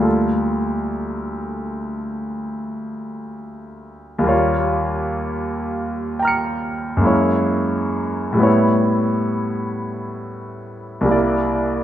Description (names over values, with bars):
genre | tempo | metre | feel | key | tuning
classical, impressionist solo piano | 43 BPM (dotted quarters) | 9/8 | rubato | unclear | A4 = 440 Hz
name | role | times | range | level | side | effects
warm grand piano | solo | 0.0-11.8 s | C2 to Db7 | -18 LUFS | equal | none
room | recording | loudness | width
moderate concert hall reverb, RT60 1.9 s | dark, warm production | -18 LUFS | side -11 dB against mid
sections
0.0-11.8 A section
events
none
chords
0.1 Gm9/D; 4.3 Eb9; 7.1 F#9; 8.5 A9; 11.1 C9